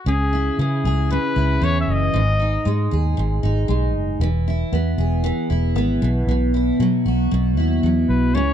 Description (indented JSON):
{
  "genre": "acoustic pop",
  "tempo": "116 BPM",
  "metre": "4/4",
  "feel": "straight",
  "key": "unclear",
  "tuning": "A4 = 439 Hz",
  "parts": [
    { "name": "clear trumpet", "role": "melody", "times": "0.1-2.9, 8.1-8.5 s", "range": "G#4 to E5", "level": "-24 LUFS", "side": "left 4 dB", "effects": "slapback echo" },
    { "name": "picked steel-string acoustic guitar", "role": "accompaniment", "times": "0.1-8.5 s", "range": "G#2 to G#4", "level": "-21 LUFS", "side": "equal", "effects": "double-tracked left and right" },
    { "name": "vintage muted fingered electric bass", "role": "bass", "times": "0.1-8.5 s", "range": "E1 to C#3", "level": "-20 LUFS", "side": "equal", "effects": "none" }
  ],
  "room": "small room ambience",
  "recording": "dry, close 1970s-style studio recording",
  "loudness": "-17 LUFS",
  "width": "side -9 dB against mid",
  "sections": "0.1-8.5 A section",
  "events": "none",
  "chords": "0.1 C#m7; 2.1 G#m; 4.2 E; 6.0 Bsus4"
}